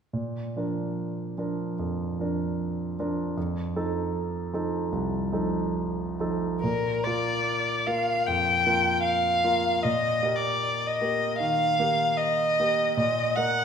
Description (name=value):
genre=classical, romantic duo for violin and grand piano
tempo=75 BPM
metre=4/4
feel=uneven beats, rubato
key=Bb major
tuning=A4 = 439 Hz
part: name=clear concert grand piano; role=accompaniment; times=0.1-13.6 s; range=C2 to Eb5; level=-28 LUFS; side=right 2 dB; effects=none
part: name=warm violin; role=melody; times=6.6-13.6 s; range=Bb4 to G5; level=-23 LUFS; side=left 1 dB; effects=none
room=wet recital hall reverb, RT60 1.6 s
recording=minimal, uncompressed stereo recording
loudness=-24 LUFS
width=side -7 dB against mid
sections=0.1-6.6 A section; 6.6-13.6 B section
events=none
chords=0.1 Bb; 3.4 F7; 6.6 Bb; 9.8 Eb/Bb; 13.0 Ebm/Bb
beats=| 0.13 0.96 1.78 2.59 | 3.37 4.14 4.92 5.74 | 6.63 7.46 8.27 9.05 | 9.84 10.62 11.40 12.19 | 12.97